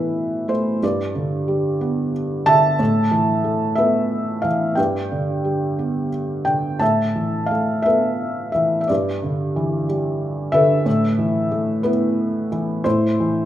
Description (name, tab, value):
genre	classical, lyrical solo piano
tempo	57-62 BPM (dotted quarters)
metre	6/8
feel	rubato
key	unclear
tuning	A4 = 439 Hz
part	felt-muted upright piano	solo	0.0-13.5 s	G2 to A5	-18 LUFS	equal	none
room	moderate recital hall reverb, RT60 1.5 s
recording	minimal, uncompressed stereo recording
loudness	-18 LUFS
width	side -12 dB against mid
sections	0.0-13.5 A section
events	none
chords	0.0 Asus2; 0.8 Em7/G; 2.8 Asus2; 4.8 G; 6.8 Asus2; 8.9 Em7/G; 10.9 Asus2; 12.9 Am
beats	| 0.83 1.82 | 2.80 3.78 | 4.78 5.78 | 6.81 7.85 | 8.90 9.89 | 10.86 11.85 | 12.85